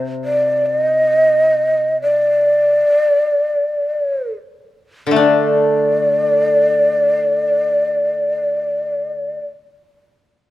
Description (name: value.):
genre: japanese traditional.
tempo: free time.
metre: none.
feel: none.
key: unclear.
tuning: A4 = 440 Hz.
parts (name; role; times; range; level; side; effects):
koto; accompaniment; 0.0-9.5 s; C3 to D4; -20 LUFS; left 2 dB; none.
breathy mellow shakuhachi; melody; 0.2-9.4 s; D5 to Eb5; -14 LUFS; equal; none.
room: light reverb.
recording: close, detailed microphones.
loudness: -13 LUFS.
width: side -15 dB against mid.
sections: 0.0-5.2 A section; 5.2-10.5 B section.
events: slowing down 0.0-5.2.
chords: none.